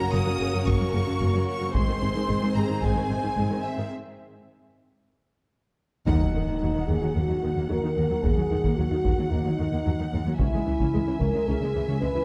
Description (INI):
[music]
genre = cinematic, hybrid orchestral and electronic film score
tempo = 111 BPM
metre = 4/4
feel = straight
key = Eb phrygian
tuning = A4 = 442 Hz
[part]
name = clear symphonic violin section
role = melody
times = 0.0-12.2 s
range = Fb5 to Eb6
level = -38 LUFS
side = equal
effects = none
[part]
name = rich symphonic violin section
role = second line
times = 0.0-12.2 s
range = Gb4 to Gb5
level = -40 LUFS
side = equal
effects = none
[part]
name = dark symphonic viola section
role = accompaniment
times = 0.0-12.2 s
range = C3 to Db4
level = -37 LUFS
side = equal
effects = none
[part]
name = clear trombone section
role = sustained chords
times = 0.0-3.9 s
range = Db3 to Bb3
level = -39 LUFS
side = equal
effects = none
[part]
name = warm French horn section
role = sustained chords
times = 0.0-12.2 s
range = C4 to Cb5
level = -32 LUFS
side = equal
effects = none
[part]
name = glassy wavetable pluck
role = arpeggios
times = 0.0-12.2 s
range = Db3 to Ab4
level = -36 LUFS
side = equal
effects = none
[part]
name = rich symphonic cello section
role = bass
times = 0.0-12.2 s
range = Db2 to Ab2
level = -32 LUFS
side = equal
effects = none
[part]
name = warm symphonic double bass section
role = bass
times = 0.1-12.1 s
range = Gb1 to Eb2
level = -32 LUFS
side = equal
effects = none
[part]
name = taiko ensemble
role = drums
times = 0.7-11.7 s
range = none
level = -32 LUFS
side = equal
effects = none
[part]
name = impact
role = sound effects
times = 6.1-8.2 s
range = none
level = -36 LUFS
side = equal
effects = none
[sound]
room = wet scoring stage reverb, RT60 1.9 s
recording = dark, warm production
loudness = -25 LUFS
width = mono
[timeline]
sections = 0.0-6.1 A section; 6.1-12.2 B section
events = break 3.9-6.1; band accent 6.1-6.6; impact 6.1-8.2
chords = 0.0 Gb; 1.7 Ab; 6.1 Ebm; 10.4 Dbm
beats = 0.13 0.67 1.21 | 1.75 2.29 2.83 3.37 | 3.91 4.45 4.99 5.53 | 6.07 6.61 7.15 7.69 | 8.23 8.78 9.32 9.86 | 10.40 10.94 11.48 12.02